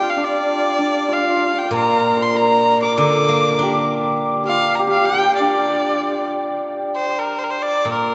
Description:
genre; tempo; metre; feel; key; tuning
chinese traditional, Chinese chamber ensemble; 98 BPM; 2/4; rubato; D jue mode; A4 = 440 Hz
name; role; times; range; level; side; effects
rich erhu; melody; 0.0-8.1 s; Bb4 to D6; -22 LUFS; equal; none
hammered dulcimer; second line; 0.0-8.1 s; D4 to D5; -22 LUFS; equal; none
steel-string zither; accompaniment; 1.7-4.8, 7.8-8.1 s; Bb2 to D4; -25 LUFS; equal; none
room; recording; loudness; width
wet cathedral reverb, RT60 6.0 s; recorded in a church or concert hall, nothing above 8.0 kHz; -18 LUFS; mono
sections
0.0-6.6 A section; 6.6-8.1 B section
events
none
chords
none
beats
| 0.49 1.10 | 1.73 2.35 | 2.98 3.59 | 4.20 4.80 | 5.41 6.03 | 6.65 7.26 | 7.88

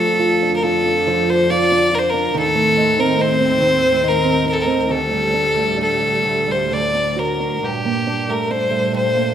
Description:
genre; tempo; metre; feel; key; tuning
celtic folk, Celtic slow air; 64-72 BPM; 3/4; rubato; unclear; A4 = 440 Hz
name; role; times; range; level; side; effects
clear fiddle; melody; 0.0-9.3 s; G4 to D5; -17 LUFS; left 2 dB; none
fingerpicked steel-string acoustic guitar; accompaniment; 0.0-9.3 s; D2 to F#4; -20 LUFS; right 3 dB; none
warm chamber string section; sustained chords; 0.0-9.3 s; D2 to C4; -25 LUFS; equal; none
room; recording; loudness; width
moderate scoring stage reverb, RT60 1.7 s; minimal, uncompressed stereo recording; -15 LUFS; side -9 dB against mid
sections
0.0-9.3 A section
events
none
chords
0.0 Dm/F; 2.4 Adim/Eb; 4.9 Dsus4; 6.7 D; 7.6 Gmadd9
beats
0.63 1.50 | 2.36 3.20 4.04 | 4.90 5.79 6.71 | 7.63 8.52

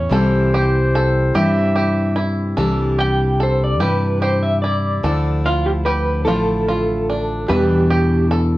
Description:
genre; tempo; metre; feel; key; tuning
acoustic folk duo or small band; 49 BPM (dotted quarters); 6/8; straight; unclear; A4 = 440 Hz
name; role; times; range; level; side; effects
warm clarinet; second line; 0.0-2.2 s; C5 to E5; -22 LUFS; right 1 dB; none
picked steel-string acoustic guitar; accompaniment; 0.0-8.6 s; E2 to E4; -20 LUFS; left 1 dB; none
bluegrass banjo; arpeggios; 0.0-8.6 s; C#4 to B4; -24 LUFS; right 2 dB; none
fingered electric bass; bass; 0.0-8.6 s; A1 to G2; -19 LUFS; equal; none
electric guitar through a small old amp; melody; 3.0-8.3 s; G4 to G5; -21 LUFS; right 1 dB; tremolo
room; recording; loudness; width
light reverb; worn, warbling old tape, cassette tape, warbly pitch drift; -15 LUFS; side -17 dB against mid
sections
0.0-2.6 A section; 2.6-8.6 B section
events
clarinet solo 0.0-2.6; clean electric guitar solo 2.6-8.6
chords
0.1 C; 2.6 Cadd9; 5.0 Dmadd9; 7.5 Em7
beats
| 0.12 1.35 | 2.58 3.81 | 5.04 6.27 | 7.50

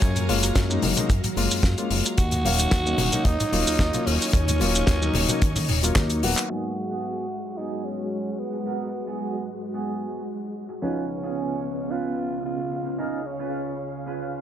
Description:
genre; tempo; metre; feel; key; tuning
nu-disco, nu disco; 111 BPM; 4/4; straight; G# dorian; A4 = 441 Hz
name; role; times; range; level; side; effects
growling tenor saxophone; melody; 0.0-14.1 s; B3 to F#4; -31 LUFS; right 1 dB; ping-pong delay
warm baby grand piano; accompaniment; 0.0-14.4 s; C#2 to E#5; -29 LUFS; left 2 dB; sidechain pumping, low-pass filter
string machine, full ensemble; sustained chords; 0.0-14.4 s; C#3 to A#5; -31 LUFS; equal; ensemble chorus, sidechain pumping
chorused synth bass; bass; 0.0-6.3 s; D#1 to F#2; -25 LUFS; equal; none
damped 70s drum kit; drums; 0.0-6.6 s; crash cymbal, handclaps, hi-hat, shaker, snare drum; -26 LUFS; left 2 dB; low-pass filter on hats, low-pass filter on cymbals, low-pass filter on snare, low-pass filter on perc, low-pass filter on room
kick drum; drums; 0.0-6.1 s; none; -22 LUFS; equal; none
egg shaker and congas; percussion; 0.0-6.5 s; none; -31 LUFS; left 2 dB; none
clean electric guitar; riff; 6.5-14.4 s; B3 to B4; -34 LUFS; right 5 dB; lush chorus, low-pass filter
room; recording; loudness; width
studio reverb; low-pass filter; -22 LUFS; side -10 dB against mid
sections
0.0-6.5 A section; 6.5-14.4 B section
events
drum fill 6.0-6.5; band accent 6.4; filter sweep on clean electric guitar 6.5-14.4; filter sweep on grand piano 6.5-14.4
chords
0.0 F#maj7; 2.2 D#m7; 6.5 G#m7; 10.8 C#7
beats
| 0.02 0.56 1.10 1.64 | 2.18 2.72 3.26 3.80 | 4.34 4.88 5.42 5.96 | 6.50 7.04 7.58 8.12 | 8.66 9.21 9.75 10.29 | 10.83 11.37 11.91 12.45 | 12.99 13.53 14.07

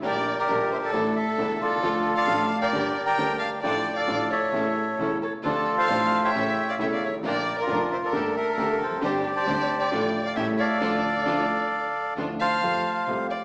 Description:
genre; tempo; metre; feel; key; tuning
tango; 134 BPM; 4/4; rubato; D minor; A4 = 440 Hz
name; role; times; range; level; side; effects
clear concert grand piano; accompaniment; 0.0-13.3 s; E1 to G4; -32 LUFS; equal; none
rich symphonic string section; stabs; 0.0-12.3 s; Bb3 to C5; -36 LUFS; equal; none
dark double bass; bass; 0.0-13.3 s; E1 to F2; -41 LUFS; equal; none
bandoneon; melody; 0.1-13.4 s; F4 to Bb5; -28 LUFS; equal; none
warm violin; second line; 0.1-13.4 s; G4 to G5; -33 LUFS; equal; none
room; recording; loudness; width
wet recital hall reverb, RT60 1.5 s; recorded in a church or concert hall, small speaker sound; -25 LUFS; mono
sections
0.0-12.6 A section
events
band accent 10.8-12.6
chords
0.0 Gm/Bb; 0.9 Asus4; 1.8 Dm; 2.7 Gm; 3.6 Dm/A; 4.5 A; 5.4 Dm7; 6.3 A; 7.2 Bb; 8.1 Gmadd9; 9.0 Gsus4; 9.9 Dm/A; 10.4 A7; 10.8 Dm; 12.6 F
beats
| 0.04 0.49 0.94 1.38 | 1.83 2.28 2.73 3.18 | 3.63 4.08 4.53 4.99 | 5.44 5.89 6.34 6.79 | 7.24 7.69 8.14 8.59 | 9.03 9.48 9.92 10.37 | 10.82 11.27 11.72 12.18 | 12.63 13.08

